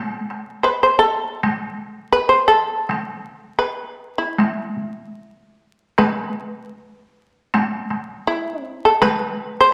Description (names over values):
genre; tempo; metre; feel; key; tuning
japanese traditional, Japanese chamber music; 73-83 BPM; 2/4; rubato; unclear; A4 = 440 Hz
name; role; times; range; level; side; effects
shamisen; melody; 0.0-9.7 s; E4 to C5; -19 LUFS; equal; none
taiko ensemble; percussion; 0.3-9.2 s; none; -24 LUFS; equal; none
room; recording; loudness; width
wet recital hall reverb, RT60 1.4 s; vinyl crackle; -20 LUFS; mono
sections
0.0-6.0 A section; 6.0-9.7 B section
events
none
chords
none